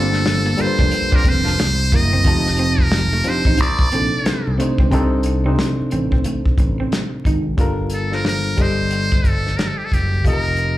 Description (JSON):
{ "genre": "R&B, neo-soul", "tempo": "90 BPM", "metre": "4/4", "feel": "swing 61% on 16ths", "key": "C dorian", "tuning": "A4 = 440 Hz", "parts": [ { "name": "trumpet with metal mute", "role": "melody", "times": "0.0-10.8 s", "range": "G4 to Eb5", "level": "-21 LUFS", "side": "equal", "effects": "slapback echo" }, { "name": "electric guitar through a small old amp", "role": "second line", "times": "0.0-7.4 s", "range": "A3 to Eb4", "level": "-27 LUFS", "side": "right 5 dB", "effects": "none" }, { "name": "barky reed electric piano", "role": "accompaniment", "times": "0.0-10.8 s", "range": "C3 to A5", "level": "-22 LUFS", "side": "left 1 dB", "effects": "overdrive, slapback echo" }, { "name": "clear horn section", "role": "stabs", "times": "0.0-1.5 s", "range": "C4 to Bb4", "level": "-30 LUFS", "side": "right 1 dB", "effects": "slapback echo" }, { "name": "fingered electric bass", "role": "bass", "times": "0.0-10.8 s", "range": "F1 to Db2", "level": "-20 LUFS", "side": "equal", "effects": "none" }, { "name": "warm soul drum kit", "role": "drums", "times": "0.1-10.8 s", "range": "hi-hat, kick drum, snare drum", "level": "-19 LUFS", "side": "equal", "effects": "none" } ], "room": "light reverb", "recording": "live gig heard through the venue's PA, club reverb, vinyl crackle", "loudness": "-15 LUFS", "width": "side -15 dB against mid", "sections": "0.0-4.9 A section; 4.9-7.6 B section; 7.6-10.8 C section", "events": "none", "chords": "0.0 Gm11; 1.6 C7; 2.2 F13; 3.6 Cm69; 7.6 Gm9; 8.6 Cm69/G; 10.2 F9sus4", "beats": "0.25 0.92 1.58 | 2.25 2.92 3.58 4.25 | 4.92 5.58 6.25 6.92 | 7.58 8.25 8.91 9.58 | 10.25" }